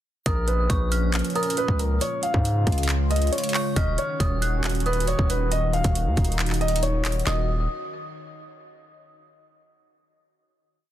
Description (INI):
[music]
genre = hip hop, trap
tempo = 137 BPM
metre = 4/4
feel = half-time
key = Eb minor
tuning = A4 = 440 Hz
[part]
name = dark baby grand piano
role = melody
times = 0.3-7.5 s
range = Bb4 to F5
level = -28 LUFS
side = equal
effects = low-pass filter, ping-pong delay
[part]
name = dark detuned synth bell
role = second line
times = 0.3-7.5 s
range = Db6 to Gb6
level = -33 LUFS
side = right 2 dB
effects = chorus, ping-pong delay
[part]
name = dark analog pad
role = sustained chords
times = 0.6-7.5 s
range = Bb2 to Gb4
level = -30 LUFS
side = equal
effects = chorus
[part]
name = distorted 808-style bass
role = bass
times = 0.3-7.7 s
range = Eb1 to Ab2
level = -24 LUFS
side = equal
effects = distortion
[part]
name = trap drum kit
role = drums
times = 0.3-7.4 s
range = handclaps, hi-hat, kick drum, snare drum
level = -26 LUFS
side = equal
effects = none
[sound]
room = little or no reverb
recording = dense, heavily limited modern master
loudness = -21 LUFS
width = side -12 dB against mid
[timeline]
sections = 0.3-7.3 hook; 7.3-9.0 final chord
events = none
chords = 0.3 Bbm; 2.0 Db; 3.8 Ebm7